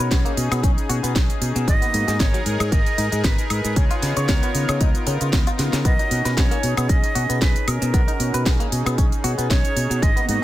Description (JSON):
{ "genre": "nu-disco, nu disco", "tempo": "115 BPM", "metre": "4/4", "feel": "swing 54% on 16ths", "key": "B lydian", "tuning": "A4 = 443 Hz", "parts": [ { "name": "breathy bright concert flute", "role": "melody", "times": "0.0-10.4 s", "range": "A#4 to D#5", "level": "-27 LUFS", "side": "right 2 dB", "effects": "tape echo" }, { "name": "warm analog pad", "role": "accompaniment", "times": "0.0-10.4 s", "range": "A#3 to A#4", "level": "-28 LUFS", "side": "left 1 dB", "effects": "chorus, sidechain pumping, dub echo" }, { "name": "direct-recorded clean electric guitar", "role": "riff", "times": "0.0-10.2 s", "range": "G#2 to C#5", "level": "-30 LUFS", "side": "left 3 dB", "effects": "lush chorus, vintage 12-bit sampler grit, dub echo" }, { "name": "fingered electric bass", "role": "bass", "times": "0.0-10.4 s", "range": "G#1 to C#3", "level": "-23 LUFS", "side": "equal", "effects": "none" }, { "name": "house drum kit", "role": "drums", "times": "0.0-10.4 s", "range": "hi-hat, shaker, snare drum, woodblock", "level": "-26 LUFS", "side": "equal", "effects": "small room ambience" }, { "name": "electronic kick drum", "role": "drums", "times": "0.1-10.1 s", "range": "none", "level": "-20 LUFS", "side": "equal", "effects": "small room ambience" } ], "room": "digital ambience", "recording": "dense, heavily limited modern master", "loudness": "-18 LUFS", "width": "side -14 dB against mid", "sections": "0.0-10.4 A section", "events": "drum fill 5.6", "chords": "0.0 Badd9; 1.7 G#m7; 3.8 C#7; 5.9 Bmaj9" }